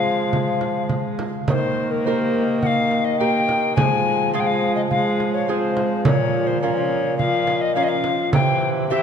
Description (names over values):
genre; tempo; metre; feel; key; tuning
classical, renaissance-style consort dance; 105 BPM; 4/4; straight; unclear; A4 = 441 Hz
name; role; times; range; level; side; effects
hollow alto recorder; melody; 0.0-9.0 s; Bb4 to Ab5; -22 LUFS; left 4 dB; none
lute; accompaniment; 0.0-9.0 s; Bb2 to Bb4; -28 LUFS; right 5 dB; none
warm viola; accompaniment; 0.0-9.0 s; E3 to Bb3; -24 LUFS; left 1 dB; none
clear bassoon; bass; 0.0-9.0 s; Bb2 to F3; -26 LUFS; right 1 dB; none
frame drum; percussion; 0.3-8.6 s; none; -25 LUFS; right 2 dB; none
room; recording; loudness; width
wet cathedral reverb, RT60 4.4 s; dark, warm production; -18 LUFS; side -7 dB against mid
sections
0.0-1.5 A section; 1.5-9.0 B section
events
none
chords
0.0 Fm; 1.5 Eb; 3.8 Fm; 6.1 Bbm; 8.3 C